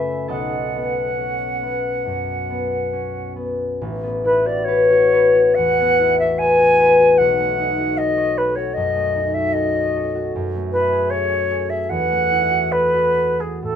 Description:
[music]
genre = classical, impressionist duo for flute and harp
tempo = 64-79 BPM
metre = 4/4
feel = rubato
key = A major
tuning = A4 = 440 Hz
[part]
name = silver concert flute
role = melody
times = 0.0-13.8 s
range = G#4 to G#5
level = -19 LUFS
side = equal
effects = none
[part]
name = concert harp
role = accompaniment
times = 0.0-13.8 s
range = A1 to C#6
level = -19 LUFS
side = left 2 dB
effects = none
[sound]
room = light reverb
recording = minimal, uncompressed stereo recording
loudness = -16 LUFS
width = side -8 dB against mid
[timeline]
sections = 0.0-3.8 A section; 3.8-13.8 B section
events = none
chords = 0.3 B9; 3.8 A69; 7.2 B9; 10.3 F#m9; 11.9 Esus24

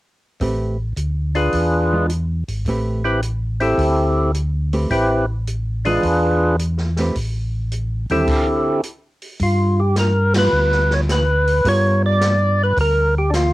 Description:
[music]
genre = soul jazz organ trio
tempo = 107 BPM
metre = 4/4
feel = swing 68% on 8ths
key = G mixolydian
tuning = A4 = 440 Hz
[part]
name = hollow-body jazz guitar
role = accompaniment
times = 0.4-13.2 s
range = D3 to B4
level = -24 LUFS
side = right 2 dB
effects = cassette tape
[part]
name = mellow tonewheel organ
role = bass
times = 0.4-13.5 s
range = G#1 to G2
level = -19 LUFS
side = equal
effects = slow rotary speaker
[part]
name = open jazz drum kit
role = drums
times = 0.4-13.5 s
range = crash cymbal, hi-hat, kick drum, ride cymbal, snare drum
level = -26 LUFS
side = equal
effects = none
[part]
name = percussive tonewheel organ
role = melody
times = 1.4-13.5 s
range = D3 to D5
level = -17 LUFS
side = equal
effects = slow rotary speaker, overdrive, cassette tape
[sound]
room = light reverb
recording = home recording on cassette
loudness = -16 LUFS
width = side -17 dB against mid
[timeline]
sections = 0.4-9.4 A section; 9.4-13.5 B section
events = band accent 10.3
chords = 0.4 Am9; 1.5 E7b9; 2.7 Am9; 3.8 D9sus4; 4.9 Am9; 6.0 E7b9; 7.2 Am7; 8.3 D9sus4; 9.4 G7#9

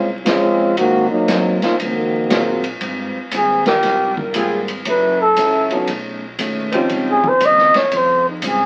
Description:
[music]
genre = jazz, big band swing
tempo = 118 BPM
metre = 4/4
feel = swing 66% on 8ths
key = Ab major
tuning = A4 = 435 Hz
[part]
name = mellow trombone section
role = second line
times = 0.0-2.6 s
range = Eb3 to Gb4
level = -18 LUFS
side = equal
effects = none
[part]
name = picked steel-string acoustic guitar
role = accompaniment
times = 0.0-8.7 s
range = Ab2 to C5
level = -28 LUFS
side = equal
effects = none
[part]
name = upright bass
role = bass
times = 0.0-8.7 s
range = Gb1 to Bb2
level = -33 LUFS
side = equal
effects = none
[part]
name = swinging big-band drum kit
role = drums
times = 0.3-8.6 s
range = hi-hat, kick drum, ride cymbal, snare drum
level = -26 LUFS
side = equal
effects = none
[part]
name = warm upright piano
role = accompaniment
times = 2.3-7.4 s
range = F3 to A4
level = -22 LUFS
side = equal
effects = none
[part]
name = trumpet with bucket mute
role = melody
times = 3.4-8.7 s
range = Eb4 to Eb5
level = -16 LUFS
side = equal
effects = none
[part]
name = clear saxophone section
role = sustained chords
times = 3.7-7.4 s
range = G3 to C5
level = -25 LUFS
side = equal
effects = none
[sound]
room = moderate club reverb, RT60 0.6 s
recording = very old 78 rpm record, vinyl crackle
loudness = -17 LUFS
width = mono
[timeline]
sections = 0.0-2.8 A section; 2.8-8.7 B section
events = trombone section solo 0.0-2.8; muted trumpet solo 2.8-8.7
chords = 0.0 Bbm9; 0.8 Ab13; 2.8 Abmaj13; 4.9 Gbm7; 5.9 B9; 6.9 Dbmaj9#11

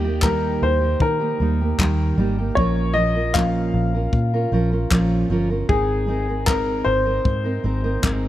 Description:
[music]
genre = acoustic pop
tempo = 77 BPM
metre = 4/4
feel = straight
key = Ab major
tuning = A4 = 439 Hz
[part]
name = clear upright piano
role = melody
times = 0.0-8.0 s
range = G4 to F5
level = -23 LUFS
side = left 2 dB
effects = none
[part]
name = fingerpicked steel-string acoustic guitar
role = accompaniment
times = 0.0-8.3 s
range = Bb2 to Bb4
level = -23 LUFS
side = right 2 dB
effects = none
[part]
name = vintage muted fingered electric bass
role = bass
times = 0.0-8.3 s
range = G1 to Eb3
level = -23 LUFS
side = equal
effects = none
[part]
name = compact cocktail drum kit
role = drums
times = 0.2-8.2 s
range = handclaps, kick drum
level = -22 LUFS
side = left 1 dB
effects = none
[sound]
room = light reverb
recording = none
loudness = -18 LUFS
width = side -13 dB against mid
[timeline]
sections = 0.0-8.3 A section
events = none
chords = 0.0 Eb; 2.6 Bbm; 5.7 Abadd9

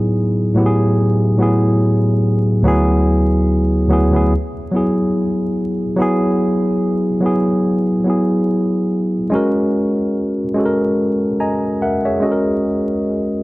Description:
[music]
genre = hip hop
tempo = 72 BPM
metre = 4/4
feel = swing 56% on 16ths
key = E major, E lydian from 6.0 s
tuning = A4 = 440 Hz
[part]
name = tine electric piano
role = solo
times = 0.0-13.4 s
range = D2 to A#5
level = -14 LUFS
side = equal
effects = cassette tape, low-pass filter
[sound]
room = moderate plate reverb, RT60 3.5 s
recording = dark, warm production, vinyl crackle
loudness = -14 LUFS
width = side -19 dB against mid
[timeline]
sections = 0.0-6.0 A section; 6.0-13.4 B section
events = tine electric piano fill 11.0-12.7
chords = 0.0 Asus2; 2.7 Dadd9; 4.3 Eadd9; 9.3 G#9sus4

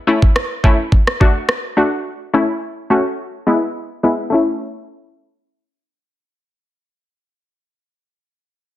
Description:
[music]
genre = dancehall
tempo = 106 BPM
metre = 4/4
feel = straight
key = A major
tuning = A4 = 441 Hz
[part]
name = analog pluck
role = accompaniment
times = 0.1-8.1 s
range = G#3 to F#4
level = -16 LUFS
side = left 1 dB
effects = chorus, low-pass filter
[part]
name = island pop drum kit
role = drums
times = 0.2-1.6 s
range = kick drum, rim click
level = -13 LUFS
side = equal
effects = soft clipping on snare
[sound]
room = light reverb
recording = dense, heavily limited modern master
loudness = -14 LUFS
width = side -14 dB against mid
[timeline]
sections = 0.0-4.3 A section; 4.3-6.6 B section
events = filter sweep on synth pluck 0.0-4.3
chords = 0.0 A; 0.9 D; 2.1 A; 3.2 E; 4.3 A

